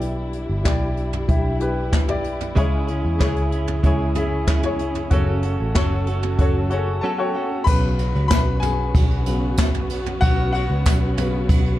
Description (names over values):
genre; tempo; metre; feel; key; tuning
piano-driven pop; 94 BPM; 4/4; straight; unclear; A4 = 442 Hz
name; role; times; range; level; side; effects
warm grand piano; accompaniment; 0.0-11.8 s; B2 to B5; -25 LUFS; left 3 dB; none
dark studio string section; sustained chords; 0.0-11.8 s; C#3 to G#4; -30 LUFS; right 1 dB; none
vintage muted picked electric bass; bass; 0.0-11.8 s; F#1 to E2; -23 LUFS; equal; none
jazz brush drum kit; drums; 0.0-11.8 s; crash cymbal, handclaps, hi-hat, kick drum, ride cymbal, snare drum, toms; -21 LUFS; equal; none
direct-recorded clean electric guitar; riff; 2.6-7.7 s; C#3 to A4; -27 LUFS; right 4 dB; vibrato effect
tambourine; percussion; 7.7-11.6 s; none; -40 LUFS; right 8 dB; none
room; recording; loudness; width
light reverb; dark, warm production; -18 LUFS; side -14 dB against mid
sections
0.0-7.7 A section; 7.7-11.8 B section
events
grand piano fill 6.7-7.7; break 7.0-7.7; grand piano solo 7.7-11.8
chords
0.0 Em7; 2.6 C#m; 5.1 F#m; 7.7 Bsus2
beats
| 0.02 0.66 1.29 1.93 | 2.57 3.21 3.84 4.48 | 5.12 5.76 6.39 7.03 | 7.67 8.31 8.94 9.58 | 10.22 10.86 11.49